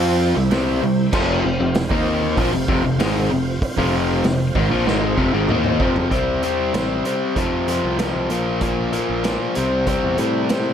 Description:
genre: classic rock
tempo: 96 BPM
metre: 4/4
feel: straight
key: unclear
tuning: A4 = 440 Hz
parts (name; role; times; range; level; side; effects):
- bright tonewheel organ; sustained chords; 0.0-6.1 s; C4 to F5; -28 LUFS; right 3 dB; slow rotary speaker, chorus vibrato
- biting overdriven guitar; riff; 0.0-10.7 s; F2 to F4; -20 LUFS; left 6 dB; none
- sludgy distorted guitar; riff; 0.0-10.7 s; F2 to F4; -24 LUFS; right 14 dB; overdrive
- modern bright picked electric bass; bass; 0.0-10.7 s; F1 to A2; -25 LUFS; right 1 dB; none
- vintage drum kit; drums; 0.5-10.7 s; crash cymbal, hi-hat, kick drum, snare drum, toms; -24 LUFS; right 1 dB; none
room: moderate studio reverb, RT60 0.6 s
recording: none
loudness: -17 LUFS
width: side -8 dB against mid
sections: 0.0-6.1 A section; 6.1-10.7 B section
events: drum fill 4.9-6.1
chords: 0.4 C; 1.1 F5; 6.1 C5; 7.4 F5; 8.3 Bb5; 9.6 C5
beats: 0.52 | 1.14 1.76 2.38 3.00 | 3.62 4.24 4.87 5.49 | 6.12 6.74 7.37 8.00 | 8.62 9.25 9.88 10.51

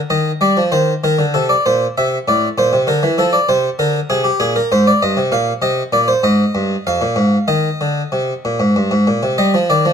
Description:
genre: classical, baroque-style two-part invention for harpsichord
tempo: 97 BPM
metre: 3/4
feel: straight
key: Eb major from 5.6 s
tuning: A4 = 438 Hz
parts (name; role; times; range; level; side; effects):
- harpsichord; solo; 0.1-9.9 s; F2 to F5; -13 LUFS; equal; none
room: light reverb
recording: none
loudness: -13 LUFS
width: side -7 dB against mid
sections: 0.0-9.4 A section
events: none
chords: 0.1 Eb; 1.4 Bbmaj9; 2.0 C7; 3.2 F; 3.8 Bb7; 5.0 Eb/G; 5.6 Ab; 6.9 Bb5/F; 7.5 Eb5; 9.4 Eb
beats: | 0.12 0.74 1.35 | 1.97 2.58 3.19 | 3.80 4.40 5.01 | 5.62 6.24 6.86 | 7.48 8.12 8.75 | 9.38

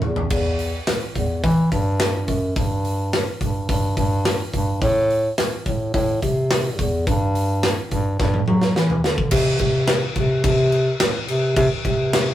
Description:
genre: quiet-loud alternative rock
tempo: 107 BPM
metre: 4/4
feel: straight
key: unclear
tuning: A4 = 440 Hz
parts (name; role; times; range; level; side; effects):
- warm bass clarinet; bass; 0.0-12.3 s; E2 to F#3; -20 LUFS; equal; none
- big rock drum kit; drums; 0.0-12.3 s; crash cymbal, hi-hat, kick drum, snare drum, toms; -22 LUFS; equal; none
room: light reverb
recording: rough rehearsal-room recording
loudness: -18 LUFS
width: side -12 dB against mid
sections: 0.3-9.3 A section; 9.3-12.3 B section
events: drum fill 0.0-0.3, 8.2-9.3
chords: none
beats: | 0.32 0.88 1.45 2.01 | 2.57 3.14 3.70 4.27 | 4.83 5.39 5.96 6.52 | 7.08 7.64 8.20 8.76 | 9.32 9.89 10.45 11.01 | 11.57 12.13

